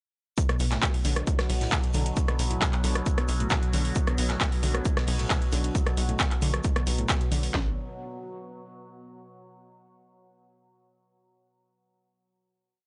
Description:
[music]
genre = driving peak-time techno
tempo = 134 BPM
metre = 4/4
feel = straight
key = B minor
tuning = A4 = 440 Hz
[part]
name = overtone-sweeping drone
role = drone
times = 1.1-7.6 s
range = B2 to F#3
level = -39 LUFS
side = equal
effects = chorus, built-in reverb, sidechain pumping
[part]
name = techno drum kit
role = drums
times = 0.4-7.6 s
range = handclaps, kick drum, snare drum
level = -29 LUFS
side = equal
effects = none
[part]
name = techno drum kit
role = drums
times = 0.4-7.5 s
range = handclaps, hi-hat, rim click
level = -33 LUFS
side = equal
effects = sidechain pumping on hats
[part]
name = tight metal drum kit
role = drums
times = 0.4-7.4 s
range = hi-hat, shaker, snare drum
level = -44 LUFS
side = equal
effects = none
[part]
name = unison pluck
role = riff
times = 0.5-7.7 s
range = A2 to D3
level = -37 LUFS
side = equal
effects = cassette tape, sidechain pumping, tape echo
[part]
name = tight sequencer bass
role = bass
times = 0.6-7.7 s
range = B1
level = -31 LUFS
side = equal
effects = sidechain pumping
[sound]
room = small room reverb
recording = dry, gritty hardware recording, nothing above 10.3 kHz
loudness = -26 LUFS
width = mono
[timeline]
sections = 0.4-7.5 drop; 7.5-9.3 final note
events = drop 0.4-7.5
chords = 0.4 Bm; 7.5 N.C.

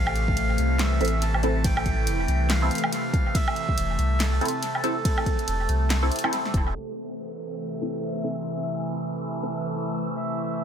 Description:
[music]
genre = deep dubstep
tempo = 141 BPM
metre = 4/4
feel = swing 59% on 16ths, half-time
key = A minor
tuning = A4 = 440 Hz
[part]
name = melodica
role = melody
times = 0.0-6.3, 10.2-10.6 s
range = A4 to A5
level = -31 LUFS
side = right 2 dB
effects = dub echo
[part]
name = overtone-sweeping drone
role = sustained chords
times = 0.0-10.6 s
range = C3 to A4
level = -29 LUFS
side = equal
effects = chorus, built-in reverb, phaser
[part]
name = saturated sub bass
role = bass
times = 0.0-6.7 s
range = E1 to C2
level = -24 LUFS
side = equal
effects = none
[part]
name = deep house drum kit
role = drums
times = 0.1-6.6 s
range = handclaps, hi-hat, ride cymbal, snare drum, woodblock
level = -30 LUFS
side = equal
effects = low-pass filter on hats, low-pass filter on perc, low-pass filter on snare, low-pass filter on cymbals, low-pass filter on room, tape echo
[part]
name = electronic kick drum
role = drums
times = 0.3-6.6 s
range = none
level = -25 LUFS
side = equal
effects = none
[part]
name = filtered dub chord stab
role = stabs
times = 1.0-9.5 s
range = C4 to A4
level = -31 LUFS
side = right 1 dB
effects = phaser, ensemble chorus, dub echo
[part]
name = downlifter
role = sound effects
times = 6.9-10.2 s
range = none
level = -47 LUFS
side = equal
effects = none
[part]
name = wind-like tuned noise texture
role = texture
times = 8.4-10.6 s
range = E6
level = -41 LUFS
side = right 5 dB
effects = built-in reverb
[sound]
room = light reverb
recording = echo-heavy mix, low-pass filter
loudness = -23 LUFS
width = side -8 dB against mid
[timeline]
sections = 0.0-6.8 A section; 6.8-10.6 B section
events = drop 0.0-6.8; filter sweep 6.8-10.6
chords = 0.0 Am

